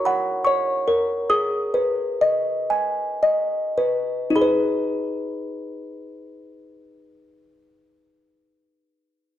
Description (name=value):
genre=children's music, lullaby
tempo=50-76 BPM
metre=3/4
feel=rubato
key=B major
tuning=A4 = 440 Hz
part: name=music box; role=solo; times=0.0-8.5 s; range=D#4 to D#6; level=-20 LUFS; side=left 1 dB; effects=none
room=moderate recital hall reverb, RT60 1.8 s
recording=worn, warbling old tape, cassette tape, warbly pitch drift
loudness=-20 LUFS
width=side -12 dB against mid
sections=0.0-4.4 A section; 4.4-7.9 B section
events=slowing down 0.0-4.4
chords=0.0 F#; 1.3 B6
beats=0.45 | 1.29 2.20 3.21 | 4.36 5.55 6.73